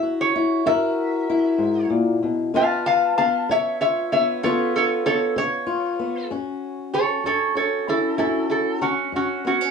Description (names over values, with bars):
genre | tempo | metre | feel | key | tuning
acoustic country blues, solo or duo | 64 BPM (dotted quarters) | 12/8 | straight | unclear | A4 = 440 Hz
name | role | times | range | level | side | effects
lap resonator guitar | melody | 0.0-9.7 s | C#4 to A5 | -20 LUFS | right 1 dB | none
fingerpicked swing-style acoustic guitar | accompaniment | 0.0-9.7 s | F#2 to B4 | -23 LUFS | left 4 dB | none
room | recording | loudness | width
moderate studio ambience, RT60 0.5 s | small room ambience | -19 LUFS | side -6 dB against mid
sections
0.0-6.3 A section; 6.3-9.7 B section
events
resonator guitar played with a steel bar solo 0.0-6.3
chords
0.0 F#7; 2.5 C#7; 6.3 F#5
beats
0.65 1.59 | 2.53 3.48 4.42 5.36 | 6.30 7.25 8.19 9.13